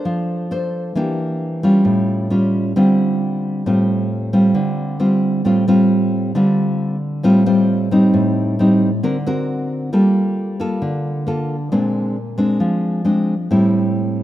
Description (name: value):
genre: bossa nova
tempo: 134 BPM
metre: 4/4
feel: straight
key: D minor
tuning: A4 = 439 Hz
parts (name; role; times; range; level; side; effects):
- nylon-string guitar; solo; 0.0-14.2 s; A2 to C5; -15 LUFS; equal; none
room: moderate lush hall reverb, RT60 2.8 s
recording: rough home demo mix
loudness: -15 LUFS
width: side -13 dB against mid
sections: 0.0-6.3 A section; 6.3-14.2 B section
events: none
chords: 0.0 Bbmaj9 (rootless); 1.0 Em7b5; 1.9 A7b13; 2.8 Dm7; 8.1 Am7b5; 9.0 Daug7; 9.9 Gm9; 11.7 Bb9; 13.5 Am7